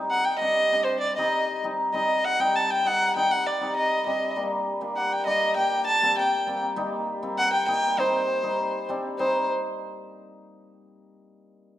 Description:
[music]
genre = klezmer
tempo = 99 BPM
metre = 2/4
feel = straight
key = C dorian sharp4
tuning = A4 = 443 Hz
[part]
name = cimbalom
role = accompaniment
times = 0.0-9.5 s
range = G3 to Eb4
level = -28 LUFS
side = left 1 dB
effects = none
[part]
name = dark violin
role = melody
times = 0.1-9.5 s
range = C5 to A5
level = -23 LUFS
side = equal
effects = none
[sound]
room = wet recital hall reverb, RT60 1.7 s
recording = none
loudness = -22 LUFS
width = side -12 dB against mid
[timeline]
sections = 0.0-9.2 A section; 9.2-10.4 B section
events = none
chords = 0.0 Cm; 4.4 Gm; 6.8 Eb; 8.0 Cm

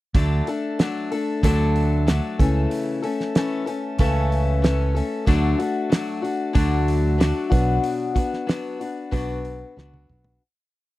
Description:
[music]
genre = folk rock and heartland rock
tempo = 94 BPM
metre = 4/4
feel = straight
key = D major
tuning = A4 = 441 Hz
[part]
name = picked acoustic archtop guitar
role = accompaniment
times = 0.1-10.4 s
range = B2 to A4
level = -23 LUFS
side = left 3 dB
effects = none
[part]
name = cloth-damped thuddy drum kit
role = drums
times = 0.1-10.4 s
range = hi-hat, kick drum, snare drum, toms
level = -20 LUFS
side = right 1 dB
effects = none
[part]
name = fingered electric bass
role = bass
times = 0.2-10.4 s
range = B1 to D2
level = -21 LUFS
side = right 1 dB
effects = none
[sound]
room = little or no reverb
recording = dry, close 1970s-style studio recording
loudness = -20 LUFS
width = side -17 dB against mid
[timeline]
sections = 0.1-10.4 verse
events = fade-out 7.8-10.4; drum fill 9.8-10.4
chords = 0.1 D; 2.4 A/C#; 5.3 D; 7.5 Bm

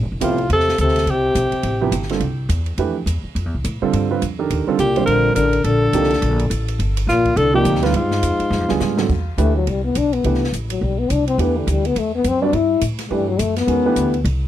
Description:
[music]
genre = modal jazz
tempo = 209 BPM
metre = 4/4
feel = swing 60% on 8ths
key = C lydian from 9.1 s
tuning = A4 = 440 Hz
[part]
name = upright bass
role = bass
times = 0.0-14.5 s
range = E1 to A2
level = -21 LUFS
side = equal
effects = none
[part]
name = clear alto saxophone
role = melody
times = 0.2-1.9, 4.8-8.8 s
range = F4 to Bb4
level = -20 LUFS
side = equal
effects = tape echo
[part]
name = breathy trombone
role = second line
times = 0.2-1.9, 4.8-14.2 s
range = Ab2 to E4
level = -20 LUFS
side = left 5 dB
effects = none
[part]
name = warm baby grand piano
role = accompaniment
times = 0.2-14.1 s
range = B1 to D5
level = -21 LUFS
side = right 8 dB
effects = none
[part]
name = open jazz drum kit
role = drums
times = 0.2-14.3 s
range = crash cymbal, hi-hat, kick drum, ride cymbal, snare drum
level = -31 LUFS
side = right 1 dB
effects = none
[sound]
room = little or no reverb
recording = dry, close 1970s-style studio recording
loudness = -16 LUFS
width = side -12 dB against mid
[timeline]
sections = 0.0-9.1 A section; 9.1-14.5 B section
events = drum fill 8.5-9.1; trombone solo 9.1-14.5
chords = 0.0 Fmaj9; 4.5 Ebmaj9; 7.9 G7b9; 9.1 Cmaj9

